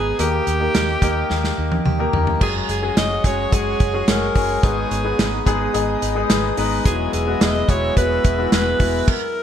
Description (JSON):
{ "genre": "1980s-style pop", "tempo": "108 BPM", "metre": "4/4", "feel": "straight", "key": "unclear", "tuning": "A4 = 440 Hz", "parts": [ { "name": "clear alto saxophone", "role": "melody", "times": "0.0-9.4 s", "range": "G4 to D#5", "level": "-24 LUFS", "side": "right 1 dB", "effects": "ping-pong delay" }, { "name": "warm concert grand piano", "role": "accompaniment", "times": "0.0-9.1 s", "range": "G#2 to C#5", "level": "-23 LUFS", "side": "left 4 dB", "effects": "wide subtle chorus" }, { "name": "direct-recorded clean electric guitar", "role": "riff", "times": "0.0-9.4 s", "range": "D#3 to G#4", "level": "-30 LUFS", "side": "right 4 dB", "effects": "wide subtle chorus, ping-pong delay" }, { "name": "vintage muted fingered electric bass", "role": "bass", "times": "0.0-9.0 s", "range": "E1 to D#2", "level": "-25 LUFS", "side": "equal", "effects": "none" }, { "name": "modern studio drum kit", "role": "drums", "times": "0.2-9.2 s", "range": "crash cymbal, hi-hat, kick drum, snare drum, toms", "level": "-20 LUFS", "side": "equal", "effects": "gated reverb" }, { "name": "glassy FM pad", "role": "sustained chords", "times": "2.8-9.1 s", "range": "G#4 to E6", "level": "-29 LUFS", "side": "left 1 dB", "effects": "ensemble chorus, built-in reverb" } ], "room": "moderate plate reverb, RT60 2.1 s", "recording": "bright 1980s-style digital production", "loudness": "-16 LUFS", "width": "side -9 dB against mid", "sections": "0.0-2.4 A section; 2.4-9.4 B section", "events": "drum fill 1.3-2.4; stop 9.1-9.4", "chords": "0.2 D#; 2.4 F#sus2; 4.6 G#m; 6.9 Eadd9", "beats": "| 0.19 0.74 1.30 1.86 | 2.41 2.97 3.52 4.08 | 4.63 5.19 5.75 6.30 | 6.86 7.41 7.97 8.52 | 9.08" }